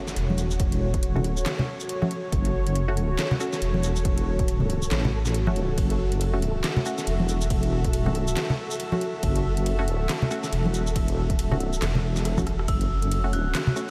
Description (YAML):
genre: deep dubstep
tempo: 139 BPM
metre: 4/4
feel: swing 58% on 16ths, half-time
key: F# minor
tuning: A4 = 440 Hz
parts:
  - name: dark analog pad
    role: sustained chords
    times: 0.0-13.9 s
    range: C#4 to E5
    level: -35 LUFS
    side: equal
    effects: chorus
  - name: filtered dub chord stab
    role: stabs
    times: 0.0-13.9 s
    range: A3 to F#4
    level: -38 LUFS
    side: equal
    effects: chorus, dub echo
  - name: impact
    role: sound effects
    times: 0.0-0.6 s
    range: none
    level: barely audible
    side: none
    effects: none
  - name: flickering grainy texture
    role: texture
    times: 0.0-13.9 s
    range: C#4 to A4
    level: -40 LUFS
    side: equal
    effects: built-in reverb, analog chorus
  - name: dubstep drum kit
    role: drums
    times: 0.1-13.9 s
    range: handclaps, hi-hat, ride cymbal, rim click, shaker, snare drum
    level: -35 LUFS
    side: equal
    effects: none
  - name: deep soft wobble bass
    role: bass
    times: 0.2-13.5 s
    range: E1 to A1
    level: -27 LUFS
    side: equal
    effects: chorus
  - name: congas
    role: percussion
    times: 0.3-13.7 s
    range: none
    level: -32 LUFS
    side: equal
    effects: none
  - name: electronic kick drum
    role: drums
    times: 0.6-12.8 s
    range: none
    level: -29 LUFS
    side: equal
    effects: none
  - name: dark detuned synth bell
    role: melody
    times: 12.7-13.9 s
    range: E6 to F#6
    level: -36 LUFS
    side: equal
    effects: chorus, dub echo
room: light reverb, digital ambience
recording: none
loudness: -25 LUFS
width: mono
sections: 0.0-13.9 A section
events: impact 0.0-0.6; drum fill 12.3-12.7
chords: 0.0 F#m